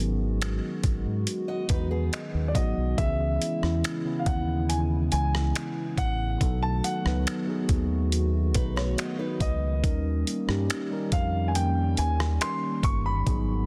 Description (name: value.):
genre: contemporary R&B.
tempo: 70 BPM.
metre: 4/4.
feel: straight.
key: C# minor.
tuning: A4 = 440 Hz.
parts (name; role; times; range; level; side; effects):
mellow tine electric piano; accompaniment; 0.0-13.7 s; C#3 to F#5; -34 LUFS; equal; none.
hollow soft pad; sustained chords; 0.0-13.7 s; C#3 to F#4; -38 LUFS; equal; chorus.
deep dub fingered electric bass; bass; 0.0-13.7 s; G1 to G#2; -29 LUFS; equal; none.
dusty soul sampler-style drum kit; drums; 0.4-13.5 s; finger snaps, hi-hat, kick drum, rim click; -31 LUFS; equal; soft clipping on snare.
fingerpicked old ladder-braced acoustic guitar; arpeggios; 1.5-2.9, 8.6-9.8 s; B3 to D#5; -39 LUFS; equal; tape echo.
warm concert grand piano; melody; 2.5-13.7 s; D5 to C#6; -35 LUFS; equal; tape echo.
room: light reverb.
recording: dense, heavily limited modern master.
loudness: -27 LUFS.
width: mono.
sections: 0.0-3.0 A section; 3.0-13.7 B section.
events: tine electric piano fill 1.7-3.0.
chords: 0.0 G#m7; 3.0 C#m7; 6.4 B7; 9.8 D#7.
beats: 0.41 1.27 2.12 | 2.98 3.84 4.69 5.55 | 6.41 7.27 8.12 8.98 | 9.84 10.69 11.55 12.41 | 13.27.